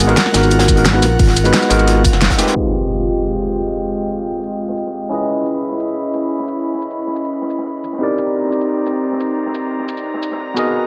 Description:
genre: liquid drum and bass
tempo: 176 BPM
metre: 4/4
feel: straight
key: unclear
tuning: A4 = 441 Hz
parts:
  - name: overdriven tine electric piano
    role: accompaniment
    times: 0.0-10.9 s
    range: Ab3 to Eb5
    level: -21 LUFS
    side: equal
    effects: phaser, dub echo
  - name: airy breathy pad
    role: sustained chords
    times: 0.0-10.9 s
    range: Ab3 to Cb6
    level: -24 LUFS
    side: equal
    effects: chorus
  - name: smooth gliding synth bass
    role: bass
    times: 0.0-2.3 s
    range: Gb1 to Bb1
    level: -18 LUFS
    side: equal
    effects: none
  - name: crunchy breakbeat drum kit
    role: drums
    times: 0.0-10.8 s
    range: hi-hat, snare drum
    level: -28 LUFS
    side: equal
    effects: high-pass filter on hats, low-pass filter on hats, studio reverb, high-pass filter on snare, low-pass filter on snare, high-pass filter on room, low-pass filter on room
  - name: pop drum kit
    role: drums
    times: 0.0-10.6 s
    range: hi-hat, shaker, snare drum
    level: -19 LUFS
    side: equal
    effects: studio reverb
  - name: harp-like synth pluck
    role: arpeggios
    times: 0.2-2.5 s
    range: Eb4 to F5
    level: -27 LUFS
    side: equal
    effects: none
  - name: electronic kick drum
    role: drums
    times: 0.7-2.4 s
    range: none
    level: -18 LUFS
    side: equal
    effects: studio reverb
  - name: impact and riser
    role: sound effects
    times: 2.6-3.9, 10.7-10.9 s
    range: none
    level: -27 LUFS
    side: equal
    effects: none
room: light reverb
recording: low-pass filter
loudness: -17 LUFS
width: mono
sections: 0.0-2.6 A section; 2.6-10.9 B section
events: drop 0.0-2.6; band accent 2.2; impact 2.6-3.9; filter sweep on analog synth pad 2.6-10.9; filter sweep 2.6-10.9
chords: 0.0 Abm9; 2.6 Fm9; 5.1 Dbm9; 8.0 Cm9

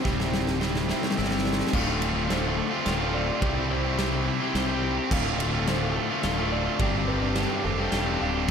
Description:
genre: post-rock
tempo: 107 BPM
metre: 3/4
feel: straight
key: D dorian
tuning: A4 = 440 Hz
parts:
  - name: bright symphonic string section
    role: sustained chords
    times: 0.0-8.5 s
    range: G4 to C6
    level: -40 LUFS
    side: equal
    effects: none
  - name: felt-muted upright piano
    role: arpeggios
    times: 0.0-8.5 s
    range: A4 to G5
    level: -38 LUFS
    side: right 4 dB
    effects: digital delay, slapback echo
  - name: twelve-string electric guitar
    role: arpeggios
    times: 0.0-8.5 s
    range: D2 to C5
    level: -34 LUFS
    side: left 2 dB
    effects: digital delay
  - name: crunchy overdriven guitar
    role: riff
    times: 0.0-8.5 s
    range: D2 to C5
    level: -29 LUFS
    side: left 10 dB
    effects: spring reverb
  - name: tight distorted guitar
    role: riff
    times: 0.0-8.5 s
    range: D2 to C5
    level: -30 LUFS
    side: right 11 dB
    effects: distortion
  - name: fuzz fingered electric bass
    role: bass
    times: 0.1-8.5 s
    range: D1 to C2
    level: -30 LUFS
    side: right 1 dB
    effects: overdrive
  - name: huge arena drum kit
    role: drums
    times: 0.1-8.5 s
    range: crash cymbal, kick drum, ride cymbal, snare drum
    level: -30 LUFS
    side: right 1 dB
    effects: none
room: moderate lush hall reverb, RT60 2.0 s, small room ambience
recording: big arena sound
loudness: -23 LUFS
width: side -7 dB against mid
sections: 0.0-1.7 A section; 1.7-8.5 B section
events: build-up 0.0-1.7; drum fill 0.0-1.7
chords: 0.0 C/D; 1.7 Dm7; 3.4 Cmaj7; 5.1 Dm7; 6.8 G7sus4

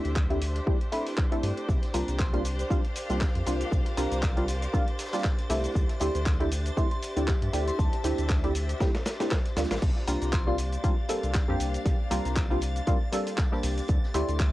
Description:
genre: deep house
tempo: 118 BPM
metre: 4/4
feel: swing 56% on 16ths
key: unclear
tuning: A4 = 440 Hz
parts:
  - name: filtered dub chord stab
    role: stabs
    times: 0.0-14.5 s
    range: G3 to B4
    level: -31 LUFS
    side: equal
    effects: wide subtle chorus, sidechain pumping, tape echo
  - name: round analog bass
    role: bass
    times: 0.0-14.5 s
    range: A1 to G2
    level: -30 LUFS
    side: equal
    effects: tube saturation
  - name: clear studio string section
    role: texture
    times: 0.0-14.5 s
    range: D4 to F5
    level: -39 LUFS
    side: equal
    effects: sidechain pumping
  - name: dusty soul sampler-style drum kit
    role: drums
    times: 0.1-14.5 s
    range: crash cymbal, handclaps, hi-hat, shaker, snare drum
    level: -35 LUFS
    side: equal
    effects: cassette tape
  - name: electronic kick drum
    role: drums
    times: 0.2-14.5 s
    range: none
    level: -27 LUFS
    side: equal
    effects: overdrive, cassette tape
  - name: warbly tape-like pad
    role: sustained chords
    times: 3.1-14.5 s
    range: Bb3 to F5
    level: -42 LUFS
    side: left 2 dB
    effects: none
  - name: vintage drum kit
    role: drums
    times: 1.7-14.5 s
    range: hi-hat, snare drum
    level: -49 LUFS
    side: equal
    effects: none
  - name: string machine, violins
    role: texture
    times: 1.7-14.5 s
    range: A6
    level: -48 LUFS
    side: equal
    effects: ensemble chorus
  - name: soft synth bell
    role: melody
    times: 1.9-14.4 s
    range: A5 to C6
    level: -40 LUFS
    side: left 2 dB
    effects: chorus, phaser, cassette tape, analog delay
room: light reverb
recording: home recording on cassette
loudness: -25 LUFS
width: side -16 dB against mid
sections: 0.0-9.8 A section; 9.8-14.5 B section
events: drum fill 8.8-9.8; band accent 9.7; drop 9.8-14.5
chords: 0.0 D9sus4; 1.7 C9sus4; 5.8 D9sus4; 9.8 C9sus4; 13.9 D9sus4

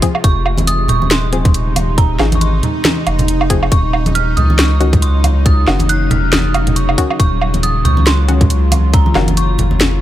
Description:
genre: deep dubstep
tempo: 138 BPM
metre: 4/4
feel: swing 58% on 16ths, half-time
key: unclear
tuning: A4 = 440 Hz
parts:
  - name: bowed-like drone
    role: sustained chords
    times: 0.0-10.0 s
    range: C3 to F4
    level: -22 LUFS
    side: equal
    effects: built-in reverb
  - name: filtered dub chord stab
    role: stabs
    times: 0.0-9.2 s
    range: Eb3 to Ab4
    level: -22 LUFS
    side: left 4 dB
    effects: chorus, vintage 12-bit sampler grit, dub echo
  - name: electronic kick drum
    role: drums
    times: 0.0-9.0 s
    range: none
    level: -12 LUFS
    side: equal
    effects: overdrive
  - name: garage drum kit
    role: drums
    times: 0.0-9.9 s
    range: hi-hat, snare drum, woodblock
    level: -17 LUFS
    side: right 1 dB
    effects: overdrive
  - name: dark detuned synth bell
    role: melody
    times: 0.2-10.0 s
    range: Bb5 to Gb6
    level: -22 LUFS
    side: right 2 dB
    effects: chorus, phaser, dub echo
  - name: soft dub sub bass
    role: bass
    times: 0.2-10.0 s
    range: Eb1 to Db2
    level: -14 LUFS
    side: equal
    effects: none
  - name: congas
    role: percussion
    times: 0.6-9.9 s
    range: none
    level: -20 LUFS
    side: right 1 dB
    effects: none
room: digital ambience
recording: none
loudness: -11 LUFS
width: side -13 dB against mid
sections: 0.0-10.0 A section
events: none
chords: 0.0 Fm; 3.7 Ebm7

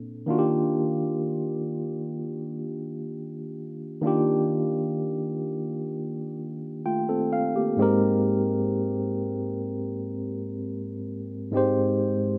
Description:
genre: R&B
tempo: 64 BPM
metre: 4/4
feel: straight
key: Ab lydian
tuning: A4 = 439 Hz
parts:
  - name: tine electric piano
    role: solo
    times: 0.0-12.4 s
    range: Ab2 to G5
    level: -27 LUFS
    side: equal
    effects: none
room: moderate lush hall reverb, RT60 2.5 s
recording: rough home demo mix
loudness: -27 LUFS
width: mono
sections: 0.0-7.8 A section; 7.8-12.4 B section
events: tine electric piano fill 6.4-7.8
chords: 0.3 Ebmaj9; 7.8 Abmaj9

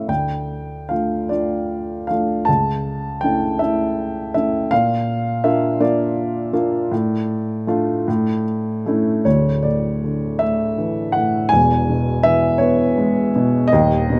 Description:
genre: classical, lyrical solo piano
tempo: 49-55 BPM (dotted quarters)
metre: 6/8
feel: rubato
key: D harmonic minor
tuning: A4 = 441 Hz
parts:
  - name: dark upright piano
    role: solo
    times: 0.0-14.2 s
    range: D1 to A5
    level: -19 LUFS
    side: equal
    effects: none
room: light reverb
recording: close, detailed microphones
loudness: -19 LUFS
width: mono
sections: 0.0-9.3 A section; 9.3-14.2 B section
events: none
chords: 0.1 Dm; 2.5 A/C#; 4.7 Bb; 6.9 Dm/A; 8.1 A; 9.3 Dsus2; 11.5 E

